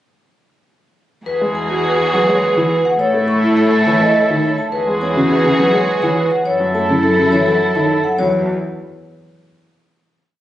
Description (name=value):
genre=classical, minimalist pattern music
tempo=104 BPM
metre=3/4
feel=straight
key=E major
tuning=A4 = 440 Hz
part: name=marimba with hard mallets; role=melody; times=1.3-8.5 s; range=G#4 to C#6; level=-21 LUFS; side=left 4 dB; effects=none
part: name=warm oboe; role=second line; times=1.3-8.0 s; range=G#4 to A4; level=-21 LUFS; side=right 1 dB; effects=none
part: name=rich studio violin section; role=sustained chords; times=1.3-8.0 s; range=E4 to A4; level=-22 LUFS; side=left 2 dB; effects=none
part: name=rich cello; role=bass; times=1.3-8.5 s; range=E2 to A2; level=-21 LUFS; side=equal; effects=none
part: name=warm concert grand piano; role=accompaniment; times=1.4-8.5 s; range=C#3 to B3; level=-19 LUFS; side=equal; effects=none
part: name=vibraphone with medium mallets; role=arpeggios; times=1.7-8.5 s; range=E4 to D#5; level=-19 LUFS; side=right 2 dB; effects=none
room=moderate recital hall reverb, RT60 1.3 s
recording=recorded on a phone in the room, studio reverb, nothing above 10.6 kHz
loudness=-13 LUFS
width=side -13 dB against mid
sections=1.3-8.2 A section; 8.2-9.9 final chord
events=none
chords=1.3 Eadd9; 3.0 A; 4.7 Eadd9; 6.5 F#m7; 8.2 Esus2